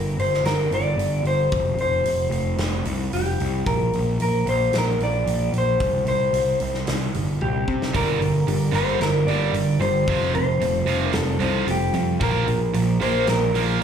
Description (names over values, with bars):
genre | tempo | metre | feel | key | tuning
quiet-loud alternative rock | 112 BPM | 4/4 | straight | G minor | A4 = 440 Hz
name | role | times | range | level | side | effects
electric guitar through a small old amp | melody | 0.0-13.8 s | G4 to D5 | -24 LUFS | left 1 dB | slapback echo
fuzz picked electric bass | bass | 0.0-13.8 s | F1 to C3 | -23 LUFS | equal | overdrive
big rock drum kit | drums | 0.2-13.7 s | hi-hat, kick drum, snare drum, toms | -30 LUFS | equal | none
fingerpicked plugged-in steel-string acoustic guitar | arpeggios | 7.9-13.8 s | G2 to Bb4 | -29 LUFS | left 3 dB | slapback echo
distorted electric guitar | riff | 7.9-13.8 s | F2 to Bb3 | -25 LUFS | right 10 dB | overdrive, slapback echo
room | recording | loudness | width
little or no reverb | live gig heard through the venue's PA, club reverb | -19 LUFS | side -8 dB against mid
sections
0.0-13.8 A section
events
drum fill 7.4-7.9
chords
0.0 Gm; 1.5 Fsus2; 3.7 Bb; 5.8 C5; 7.9 Gm; 10.1 Fadd9; 12.2 Bb5